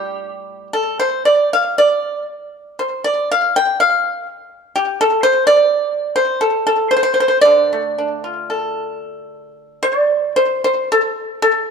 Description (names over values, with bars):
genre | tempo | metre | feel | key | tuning
chinese traditional, Chinese solo plucked strings | 54-63 BPM | 2/4 | rubato | D yu mode | A4 = 440 Hz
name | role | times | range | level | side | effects
pipa | solo | 0.0-11.7 s | A2 to G5 | -14 LUFS | equal | slapback echo
room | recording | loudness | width
moderate recital hall reverb, RT60 1.7 s | close, detailed microphones | -14 LUFS | side -6 dB against mid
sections
0.0-9.8 A section; 9.8-11.7 B section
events
none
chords
none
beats
0.72 | 1.76 2.79 | 3.80 4.78 | 5.74 6.71 | 7.71 8.77 | 9.84 10.89